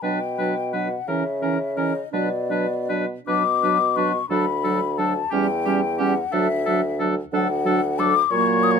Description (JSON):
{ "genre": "classical, slow romantic movement for wind quintet", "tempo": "50-61 BPM (dotted quarters)", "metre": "6/8", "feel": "rubato", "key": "B minor", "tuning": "A4 = 440 Hz", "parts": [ { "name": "mellow hollow concert flute", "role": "melody", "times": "0.0-8.8 s", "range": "D5 to D#6", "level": "-24 LUFS", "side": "left 10 dB", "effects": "none" }, { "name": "warm oboe", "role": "second line", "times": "0.0-8.8 s", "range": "G4 to C#5", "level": "-28 LUFS", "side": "left 3 dB", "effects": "none" }, { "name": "clear clarinet", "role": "accompaniment", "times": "0.0-8.8 s", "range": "A#3 to D4", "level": "-26 LUFS", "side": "right 11 dB", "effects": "none" }, { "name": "mellow French horn", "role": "accompaniment", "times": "0.0-8.8 s", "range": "E3 to G3", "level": "-28 LUFS", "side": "right 1 dB", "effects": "none" }, { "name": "mellow bassoon", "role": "bass", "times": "0.0-8.8 s", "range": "D2 to C#3", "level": "-26 LUFS", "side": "right 2 dB", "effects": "none" } ], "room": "little or no reverb", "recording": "close, detailed microphones", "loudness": "-20 LUFS", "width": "side -6 dB against mid", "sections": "0.0-8.8 A section", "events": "none", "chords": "0.0 Bm; 1.1 A#dim/C#; 2.1 Bm; 4.3 D; 5.3 C#dim/E; 6.3 D" }